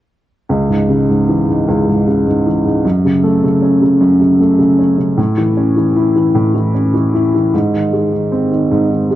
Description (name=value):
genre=pop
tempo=51 BPM (dotted quarters)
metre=6/8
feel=straight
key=C# minor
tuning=A4 = 437 Hz
part: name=warm upright piano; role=accompaniment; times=0.5-9.2 s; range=C#2 to E4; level=-11 LUFS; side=equal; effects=none
room=light reverb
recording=worn, warbling old tape, cassette tape, warbly pitch drift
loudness=-11 LUFS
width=side -13 dB against mid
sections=0.5-9.2 A section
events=none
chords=0.5 C#m; 2.8 F#m; 5.2 A; 7.5 G#